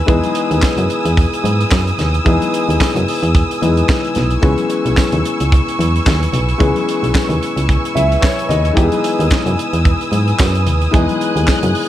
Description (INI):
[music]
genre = disco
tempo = 110 BPM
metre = 4/4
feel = swing 56% on 16ths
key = unclear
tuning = A4 = 440 Hz
[part]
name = warm concert grand piano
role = accompaniment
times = 0.0-11.9 s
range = E3 to E5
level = -18 LUFS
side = left 3 dB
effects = none
[part]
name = rich studio string section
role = sustained chords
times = 0.0-11.9 s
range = B4 to F#6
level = -22 LUFS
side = right 1 dB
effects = none
[part]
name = solid FM bass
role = bass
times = 0.1-11.7 s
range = B1 to G#2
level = -16 LUFS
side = right 1 dB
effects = none
[part]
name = tight funk drum kit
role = drums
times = 0.1-11.9 s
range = handclaps, hi-hat, kick drum, snare drum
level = -17 LUFS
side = right 1 dB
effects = none
[part]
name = congas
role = percussion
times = 0.2-11.9 s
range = none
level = -27 LUFS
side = left 6 dB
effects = none
[part]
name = tambourine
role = percussion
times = 0.6-11.6 s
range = none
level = -34 LUFS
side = right 8 dB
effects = none
[sound]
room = studio ambience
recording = none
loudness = -12 LUFS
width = side -12 dB against mid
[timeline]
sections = 0.0-11.9 A section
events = grand piano fill 7.7-8.8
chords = 0.1 Emaj7; 4.4 C#m7; 8.8 Emaj7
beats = | 0.08 0.62 1.17 1.71 | 2.25 2.80 3.34 3.88 | 4.43 4.97 5.51 6.06 | 6.60 7.14 7.69 8.23 | 8.77 9.31 9.86 10.40 | 10.94 11.49